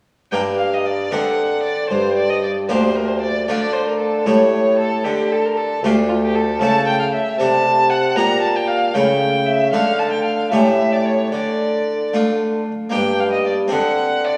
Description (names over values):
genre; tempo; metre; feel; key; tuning
classical, baroque-style sonata movement with continuo; 76 BPM (dotted quarters); 6/8; straight; G minor, D minor from 6.6 s; A4 = 441 Hz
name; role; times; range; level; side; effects
warm violin; melody; 0.3-14.4 s; F4 to Bb5; -22 LUFS; equal; none
harpsichord; accompaniment; 0.3-14.4 s; D2 to Bb4; -23 LUFS; equal; none
mellow bassoon; bass; 0.3-14.4 s; D2 to D3; -23 LUFS; equal; none
room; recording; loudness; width
wet concert hall reverb, RT60 2.0 s; recorded in a church or concert hall, vinyl crackle, small room ambience; -18 LUFS; mono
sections
0.3-12.9 A section; 12.9-14.4 A section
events
none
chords
0.3 Gm; 1.1 D7; 1.9 Gm; 3.5 Dm; 4.3 A7; 5.1 Dm; 6.6 A/C#; 7.4 D5/C; 8.2 Gm/Bb; 9.0 A7/C#; 9.7 D5; 10.5 A7; 11.3 Dm; 12.9 Gm; 13.7 D7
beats
| 0.32 1.12 | 1.91 2.69 | 3.48 4.27 | 5.05 5.83 | 6.61 7.39 | 8.17 8.95 | 9.73 10.52 | 11.32 12.13 | 12.93 13.72